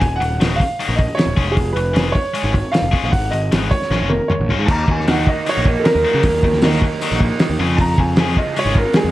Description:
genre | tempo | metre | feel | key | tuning
indie rock | 154 BPM | 4/4 | straight | Eb minor | A4 = 440 Hz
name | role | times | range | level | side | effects
clear upright piano | melody | 0.0-9.1 s | G4 to Bb5 | -21 LUFS | right 1 dB | slapback echo
overdriven electric guitar | riff | 0.0-9.0 s | Eb3 to Ab4 | -24 LUFS | left 5 dB | none
fuzz picked electric bass | bass | 0.0-9.1 s | Eb1 to Db3 | -20 LUFS | equal | overdrive
cloth-damped thuddy drum kit | drums | 0.0-9.0 s | crash cymbal, hi-hat, kick drum, snare drum, toms | -18 LUFS | equal | none
raw garage guitar | riff | 4.7-9.1 s | Eb2 to Ab4 | -23 LUFS | right 6 dB | overdrive, lush chorus, slapback echo
room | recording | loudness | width
moderate studio reverb, RT60 0.9 s | dark, warm production | -14 LUFS | side -16 dB against mid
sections
0.0-4.7 A section; 4.7-9.1 B section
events
drum fill 3.9-4.7; upright piano solo 4.7-9.1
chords
0.0 Ebm; 1.4 Db/F; 3.1 Abm; 3.9 Bbm; 4.7 Ebm; 7.6 Db/F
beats
| 0.01 0.40 0.79 1.18 | 1.57 1.96 2.35 2.74 | 3.13 3.52 3.91 4.30 | 4.69 5.08 5.47 5.86 | 6.24 6.63 7.02 7.41 | 7.79 8.18 8.57 8.95

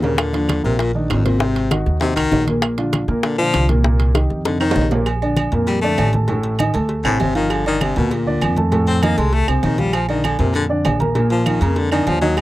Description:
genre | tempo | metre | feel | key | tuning
Afro-Cuban jazz | 197 BPM | 4/4 | straight | Bb major | A4 = 440 Hz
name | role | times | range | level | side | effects
clear baritone saxophone | second line | 0.0-12.4 s | D2 to C4 | -20 LUFS | left 3 dB | none
dark baby grand piano | accompaniment | 0.0-12.4 s | A2 to Bb5 | -21 LUFS | right 1 dB | none
upright bass | bass | 0.0-12.4 s | G1 to Bb2 | -20 LUFS | equal | none
bongos and cowbell | percussion | 0.0-12.4 s | none | -27 LUFS | left 4 dB | none
congas | percussion | 0.0-12.4 s | none | -25 LUFS | left 1 dB | none
timbales and agogo bells | percussion | 0.0-12.4 s | none | -26 LUFS | right 6 dB | none
claves | percussion | 0.2-12.4 s | none | -28 LUFS | right 6 dB | none
room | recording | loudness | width
little or no reverb | dry, close 1970s-style studio recording | -15 LUFS | side -16 dB against mid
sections
0.0-5.1 A section; 5.1-12.4 A section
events
drum fill 0.0, 4.5-5.1; baritone saxophone solo 0.0-12.4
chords
0.2 Ebsus2; 1.4 Ab9; 2.6 Bb; 3.8 Cm7; 4.5 F5; 5.1 Bbmaj7; 6.3 Asus4; 6.9 D5; 7.5 Gm9; 8.7 F7; 9.9 Bb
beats
| 0.19 0.49 0.80 1.10 | 1.41 1.71 2.02 2.32 | 2.63 2.93 3.24 3.54 | 3.85 4.15 4.46 4.76 | 5.07 5.37 5.68 5.98 | 6.29 6.59 6.89 7.20 | 7.50 7.81 8.12 8.42 | 8.72 9.03 9.33 9.64 | 9.94 10.25 10.55 10.86 | 11.16 11.47 11.77 12.08 | 12.38

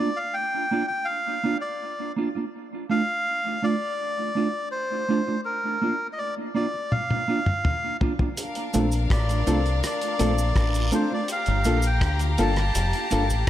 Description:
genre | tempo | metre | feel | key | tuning
lovers rock reggae | 82 BPM | 4/4 | straight | Bb major | A4 = 440 Hz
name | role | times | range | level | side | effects
melodica | melody | 0.0-13.5 s | Bb4 to A5 | -27 LUFS | equal | tape echo
mellow electric guitar | stabs | 0.0-13.2 s | A3 to F4 | -28 LUFS | right 4 dB | dub echo
cloth-damped thuddy drum kit | drums | 6.9-13.5 s | hi-hat, kick drum, rim click, toms | -26 LUFS | equal | gated reverb
rich symphonic violin section | second line | 8.4-13.5 s | D4 to Bb5 | -31 LUFS | left 2 dB | none
cabasa and guiro | percussion | 8.4-13.5 s | none | -38 LUFS | right 2 dB | none
dark grand piano | accompaniment | 8.7-13.3 s | Bb3 to A4 | -30 LUFS | left 4 dB | none
deep dub fingered electric bass | bass | 8.8-13.5 s | F1 to D2 | -23 LUFS | equal | none
room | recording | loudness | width
light reverb, small room ambience | none | -22 LUFS | side -12 dB against mid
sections
0.0-13.5 A section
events
drum fill 6.9-8.4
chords
0.0 Bb6; 2.5 Amadd11; 5.5 Bb; 8.4 Bbmaj7; 11.3 Gm7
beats
0.34 1.07 1.80 | 2.53 3.26 3.99 4.72 | 5.45 6.18 6.91 7.64 | 8.37 9.10 9.83 10.56 | 11.29 12.02 12.75 13.48

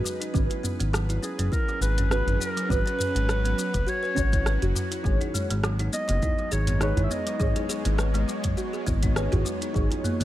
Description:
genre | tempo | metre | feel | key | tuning
organic downtempo | 102 BPM | 4/4 | swing 55% on 16ths | unclear | A4 = 440 Hz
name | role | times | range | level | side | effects
breathy clarinet | melody | 0.0-7.7 s | G#4 to E5 | -32 LUFS | equal | tape echo
deep mellow chord stab | accompaniment | 0.0-10.2 s | C#4 to C#5 | -34 LUFS | right 2 dB | chorus, phaser, sidechain pumping, tape echo
bowed-like drone | sustained chords | 0.0-10.2 s | A#2 to B4 | -35 LUFS | equal | built-in reverb, vintage 12-bit sampler grit, sidechain pumping
kalimba | arpeggios | 0.0-10.2 s | E#3 to C#5 | -33 LUFS | equal | tape echo
smooth synth bass | bass | 0.0-10.2 s | F#1 to G#1 | -25 LUFS | equal | none
afro-pop drum kit | drums | 0.1-10.2 s | hi-hat, rim click, shaker, toms | -31 LUFS | equal | none
electronic kick drum | drums | 0.3-9.9 s | none | -27 LUFS | equal | none
wind-like tuned noise texture | texture | 5.9-10.2 s | C#5 | -41 LUFS | right 2 dB | built-in reverb
djembe | percussion | 5.2-10.2 s | none | -34 LUFS | right 1 dB | none
room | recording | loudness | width
light reverb | none | -23 LUFS | side -14 dB against mid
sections
0.0-10.2 A section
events
none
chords
0.3 F#7sus4; 5.1 B6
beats
| 0.35 0.93 1.52 2.11 | 2.70 3.29 3.88 4.46 | 5.05 5.64 6.23 6.82 | 7.41 7.99 8.58 9.17 | 9.76

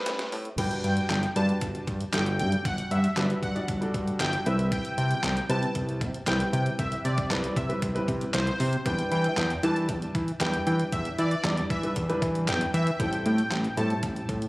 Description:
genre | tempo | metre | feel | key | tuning
dance-pop | 116 BPM | 4/4 | straight | G major | A4 = 440 Hz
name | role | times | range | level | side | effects
warm baby grand piano | accompaniment | 0.0-14.3 s | G3 to D5 | -32 LUFS | equal | sidechain pumping
fat analog bass | bass | 0.1-14.5 s | G1 to E3 | -27 LUFS | equal | sidechain pumping
detuned 8-bit digital drum machine | drums | 0.1-14.5 s | crash cymbal, handclaps, hi-hat, kick drum, snare drum | -32 LUFS | equal | none
soft supersaw | melody | 0.6-13.9 s | C5 to A5 | -32 LUFS | equal | tape echo
room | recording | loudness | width
light reverb | recorded on a phone in the room, club reverb, compression, high-pass filter | -24 LUFS | side -21 dB against mid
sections
0.6-14.5 A section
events
drum fill 0.0-0.6; drop 0.6-14.5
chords
0.0 Am7; 0.6 Gmaj7; 4.5 Cmaj7; 8.9 Em7; 13.0 Am7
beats
0.07 | 0.58 1.10 1.62 2.13 | 2.65 3.17 3.69 4.20 | 4.72 5.24 5.75 6.27 | 6.79 7.31 7.82 8.34 | 8.86 9.38 9.89 10.41 | 10.93 11.44 11.96 12.48 | 13.00 13.51 14.03

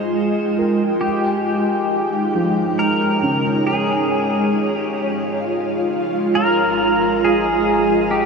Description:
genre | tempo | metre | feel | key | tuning
ambient | 68 BPM | 3/4 | straight | Ab major | A4 = 439 Hz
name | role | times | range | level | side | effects
pedal steel guitar | melody | 0.0-8.3 s | G4 to C5 | -21 LUFS | left 1 dB | analog chorus, shimmer reverb, analog delay
ethereal airy pad | sustained chords | 0.0-8.3 s | Ab3 to G5 | -19 LUFS | right 1 dB | ensemble chorus, built-in reverb, tremolo, shimmer reverb
felt-muted upright piano | arpeggios | 0.0-8.3 s | Db3 to Bb5 | -27 LUFS | equal | shimmer reverb, analog delay
analog drone | drone | 0.0-8.3 s | Ab3 to Eb4 | -27 LUFS | right 2 dB | chorus
warm sub bass | bass | 6.3-8.3 s | Ab1 | -40 LUFS | equal | none
room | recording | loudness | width
wet huge ambient reverb, RT60 7.3 s | dreamy mix soaked in reverb | -16 LUFS | side -4 dB against mid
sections
0.0-6.3 A section; 6.3-8.3 B section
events
none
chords
0.0 Fmadd9/Ab; 1.0 Eb7/Ab; 3.7 Db; 6.3 Ab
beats
0.15 | 1.03 1.91 2.79 | 3.68 4.56 5.44 | 6.33 7.21 8.09

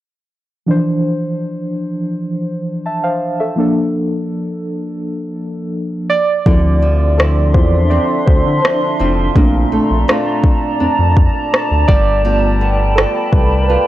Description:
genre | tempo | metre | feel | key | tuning
contemporary R&B | 83 BPM | 4/4 | straight | D minor | A4 = 441 Hz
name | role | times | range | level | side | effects
muted felt-like synth keys | accompaniment | 0.7-13.9 s | E3 to A5 | -17 LUFS | right 1 dB | chorus, tremolo
granular cloud pad | sustained chords | 7.0-13.9 s | D4 to C6 | -19 LUFS | right 1 dB | built-in reverb, sidechain pumping
flamenco guitar | arpeggios | 6.5-13.9 s | Bb2 to A4 | -23 LUFS | left 1 dB | none
smooth synth bass | bass | 6.5-13.8 s | F1 to D3 | -15 LUFS | equal | none
smooth R&B drum kit | drums | 6.5-13.5 s | kick drum, rim click | -13 LUFS | equal | overdrive, vintage 12-bit sampler grit
room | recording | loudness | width
little or no reverb | dry, gritty hardware recording, cassette tape | -13 LUFS | side -14 dB against mid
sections
0.7-6.5 A section; 6.5-13.9 B section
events
synth keys solo 6.5-13.9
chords
0.7 Dm9; 3.6 Bbmaj7; 6.1 N.C.; 6.5 Dm9; 9.4 Bbmaj7; 11.9 G9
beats
| 0.68 1.40 2.13 2.85 | 3.57 4.30 5.02 5.74 | 6.46 7.19 7.91 8.63 | 9.36 10.08 10.80 11.53 | 12.25 12.97 13.69

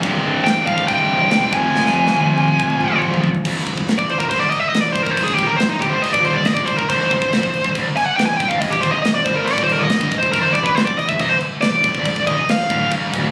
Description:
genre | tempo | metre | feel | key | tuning
heavy metal | 140 BPM | 4/4 | straight | C minor | A4 = 440 Hz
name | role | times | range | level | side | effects
glass harmonica | sustained chords | 0.0-3.4 s | G3 to F5 | -34 LUFS | equal | none
high-gain distorted guitar | riff | 0.0-3.2 s | C2 to F3 | -24 LUFS | equal | distortion
scooped high-gain guitar | riff | 0.0-13.3 s | C2 to F3 | -27 LUFS | equal | distortion
fuzz fingered electric bass | bass | 0.0-13.3 s | C1 to G1 | -27 LUFS | equal | overdrive
tight metal drum kit | drums | 0.0-13.2 s | crash cymbal, kick drum, snare drum, toms | -24 LUFS | equal | none
high-gain lead guitar | melody | 0.4-12.9 s | Eb4 to Ab5 | -20 LUFS | equal | distortion, tape echo
room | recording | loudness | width
light reverb | recorded on a phone in the room, club reverb | -17 LUFS | mono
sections
0.0-3.5 A section; 3.5-13.3 B section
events
drum fill 1.7-3.5; lead electric guitar solo 3.5-13.3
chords
0.0 Cm; 1.5 Fm; 3.5 Cm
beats
| 0.04 0.46 0.89 1.32 | 1.75 2.17 2.60 3.03 | 3.46 3.89 4.32 4.75 | 5.17 5.60 6.04 6.46 | 6.89 7.33 7.76 8.19 | 8.62 9.05 9.48 9.91 | 10.34 10.77 11.20 11.63 | 12.06 12.49 12.93

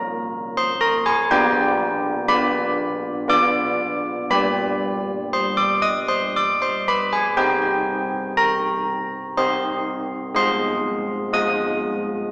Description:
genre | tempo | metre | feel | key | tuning
classical, tune for church bells | 60 BPM | 3/4 | straight | unclear | A4 = 440 Hz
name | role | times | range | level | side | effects
old church bells | solo | 0.0-12.3 s | G3 to Eb6 | -18 LUFS | equal | none
room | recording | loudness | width
wet scoring stage reverb, RT60 1.6 s | recorded in a church or concert hall, small speaker sound | -18 LUFS | side -25 dB against mid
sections
0.0-12.3 A section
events
none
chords
0.0 Bb5; 1.3 G7/B; 4.3 G; 7.4 Cm; 10.4 Fm7/Ab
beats
0.31 | 1.29 2.28 3.28 | 4.30 5.33 6.34 | 7.36 8.36 9.36 | 10.35 11.34

